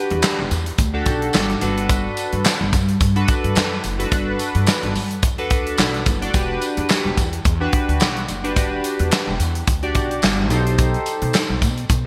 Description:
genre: early-eighties boogie funk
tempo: 108 BPM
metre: 4/4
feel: swing 56% on 16ths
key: E minor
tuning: A4 = 439 Hz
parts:
  - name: chorused polysynth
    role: accompaniment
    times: 0.0-11.4 s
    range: D4 to D5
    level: -26 LUFS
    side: equal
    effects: none
  - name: upright bass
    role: bass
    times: 0.1-12.1 s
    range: E1 to B2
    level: -24 LUFS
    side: equal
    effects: none
  - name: modern studio drum kit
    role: drums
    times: 0.1-12.0 s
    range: handclaps, hi-hat, kick drum, snare drum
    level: -22 LUFS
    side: equal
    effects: gated reverb
  - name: tambourine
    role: percussion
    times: 0.2-12.0 s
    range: none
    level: -35 LUFS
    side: equal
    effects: none
room: moderate lush hall reverb, RT60 2.5 s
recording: bright 1980s-style digital production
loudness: -20 LUFS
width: mono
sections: 0.0-12.1 A section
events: none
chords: 0.0 Em7; 1.6 Gmaj7; 6.3 Em7; 10.5 B7b9b13

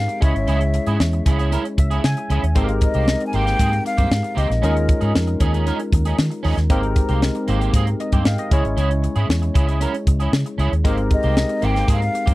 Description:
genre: polished 1980s jazz-funk pop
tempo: 116 BPM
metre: 4/4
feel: straight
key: Ab major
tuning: A4 = 440 Hz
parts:
  - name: breathy mellow silver concert flute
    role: melody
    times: 0.0-5.2, 11.1-12.3 s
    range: Eb5 to Ab5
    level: -24 LUFS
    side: left 2 dB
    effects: none
  - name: barky tine electric piano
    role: accompaniment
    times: 0.0-12.3 s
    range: Ab3 to Ab5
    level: -24 LUFS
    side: left 2 dB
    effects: overdrive, analog chorus
  - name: vintage muted fingered electric bass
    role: bass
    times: 0.0-12.3 s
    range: Ab1 to Eb3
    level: -20 LUFS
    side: equal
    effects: none
  - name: electric guitar at the edge of break-up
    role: riff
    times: 0.1-12.3 s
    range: Bb3 to Bb4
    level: -27 LUFS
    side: right 5 dB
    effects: analog chorus
  - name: crisp fusion drum kit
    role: drums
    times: 0.1-12.3 s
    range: hi-hat, kick drum, snare drum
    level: -19 LUFS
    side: equal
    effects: none
room: little or no reverb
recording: dry, close 1970s-style studio recording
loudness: -16 LUFS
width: side -18 dB against mid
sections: 0.0-12.3 A section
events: tine electric piano fill 1.5-2.6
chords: 0.2 Dbm; 2.6 Abmaj9; 4.6 Eb7sus4; 6.7 Abmaj9; 8.5 Dbm; 10.8 Abmaj9

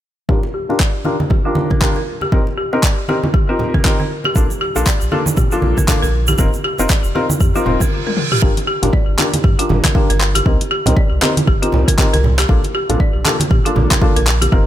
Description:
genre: afro house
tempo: 118 BPM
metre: 4/4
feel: swing 59% on 16ths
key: G minor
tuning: A4 = 440 Hz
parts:
  - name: folk marimba with hard mallets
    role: arpeggios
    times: 0.3-14.7 s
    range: F4 to D5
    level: -22 LUFS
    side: equal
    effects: sidechain pumping, low-pass filter, ping-pong delay
  - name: felt-muted upright piano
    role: stabs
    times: 0.3-14.6 s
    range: Bb3 to Bb4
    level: -21 LUFS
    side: left 2 dB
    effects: sidechain pumping, low-pass filter, ping-pong delay
  - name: electronic kick drum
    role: drums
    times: 0.3-14.6 s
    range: none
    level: -15 LUFS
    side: equal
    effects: none
  - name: congas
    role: percussion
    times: 0.3-14.5 s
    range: none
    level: -22 LUFS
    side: right 2 dB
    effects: none
  - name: deep house drum kit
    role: drums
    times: 0.8-14.5 s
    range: handclaps, hi-hat, toms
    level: -20 LUFS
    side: left 1 dB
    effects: none
  - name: warm sub bass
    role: bass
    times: 4.4-14.6 s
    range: F1 to Bb2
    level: -18 LUFS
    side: equal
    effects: sidechain pumping
  - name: egg shaker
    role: percussion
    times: 4.4-7.9 s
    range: none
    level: -26 LUFS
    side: right 5 dB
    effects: none
  - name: reverse cymbal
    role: sound effects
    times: 7.7-8.4 s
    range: none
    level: -24 LUFS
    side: right 6 dB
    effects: none
room: small room ambience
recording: none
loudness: -13 LUFS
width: side -12 dB against mid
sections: 0.3-8.4 A section; 8.4-14.7 B section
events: filter sweep on marimba 0.3-8.4; filter sweep on felt piano 0.3-8.4, 8.4-14.7; reverse cymbal 7.7-8.4; break 7.9-8.4; drum fill 8.0-8.4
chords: 0.3 Gm7; 2.3 Cm7; 4.4 Bbmaj7; 6.4 F7sus4; 8.4 Gm7; 10.5 Cm7; 12.5 Bbmaj7

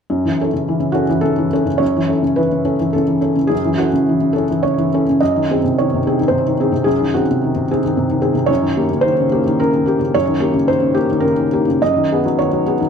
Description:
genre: neoclassical minimalist piano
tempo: 107 BPM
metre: 3/4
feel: rubato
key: unclear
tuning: A4 = 438 Hz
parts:
  - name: felt-muted upright piano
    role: solo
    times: 0.1-12.9 s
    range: F#2 to D#5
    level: -14 LUFS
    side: equal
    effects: slapback echo
room: moderate small room reverb, RT60 0.5 s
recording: none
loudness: -14 LUFS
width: side -7 dB against mid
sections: 0.1-1.8 A section; 1.8-12.9 B section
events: none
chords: 0.1 F#m7; 5.2 G#7/F#; 8.5 D#7/F#; 11.8 G#m/F#

